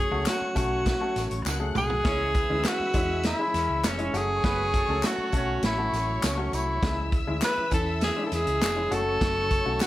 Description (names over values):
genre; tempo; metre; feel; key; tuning
uptempo 1960s-style soul; 101 BPM; 4/4; straight; unclear; A4 = 442 Hz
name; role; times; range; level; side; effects
warm tenor saxophone; melody; 0.0-9.9 s; C#4 to B4; -27 LUFS; equal; none
muted studio string section; second line; 0.0-9.9 s; C#5 to F#6; -37 LUFS; left 3 dB; none
percussive tonewheel organ; sustained chords; 0.0-9.9 s; E3 to G#4; -39 LUFS; right 3 dB; slow rotary speaker, chorus vibrato
hollow-body short-scale fingered electric bass; bass; 0.0-9.8 s; F1 to E2; -32 LUFS; equal; none
warm baby grand piano; accompaniment; 0.1-9.9 s; E3 to A4; -34 LUFS; left 3 dB; plate reverb
vintage drum kit; drums; 0.3-9.9 s; hi-hat, kick drum, snare drum, toms; -29 LUFS; equal; none
handclaps and tambourine; percussion; 0.3-9.9 s; none; -37 LUFS; left 2 dB; none
mellow horn section; second line; 2.1-5.9 s; A3 to E5; -37 LUFS; right 4 dB; plate reverb
room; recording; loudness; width
light reverb; none; -23 LUFS; side -15 dB against mid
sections
0.0-9.9 A section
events
drum fill 1.5-2.1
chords
0.0 F#m; 2.1 C#m; 4.1 F#m; 6.8 C#m; 8.9 F#m